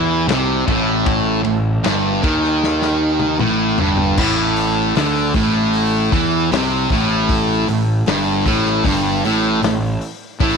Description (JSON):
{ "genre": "blues rock power trio and southern rock", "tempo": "77 BPM", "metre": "4/4", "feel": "straight", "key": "unclear", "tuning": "A4 = 438 Hz", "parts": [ { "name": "fuzz guitar", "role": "riff", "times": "0.0-10.6 s", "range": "G2 to E3", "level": "-16 LUFS", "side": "right 1 dB", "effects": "distortion" }, { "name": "fuzz fingered electric bass", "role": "bass", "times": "0.0-10.6 s", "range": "G1 to E2", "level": "-22 LUFS", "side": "equal", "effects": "overdrive" }, { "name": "vintage drum kit", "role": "drums", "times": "0.3-10.6 s", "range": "crash cymbal, hi-hat, kick drum, ride cymbal, snare drum, toms", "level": "-23 LUFS", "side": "left 3 dB", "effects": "none" } ], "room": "light reverb", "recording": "1960s-style stereo", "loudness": "-14 LUFS", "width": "side -6 dB against mid", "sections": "0.0-4.2 A section; 4.2-10.6 A section", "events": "drum fill 2.6-4.2", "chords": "0.0 A5" }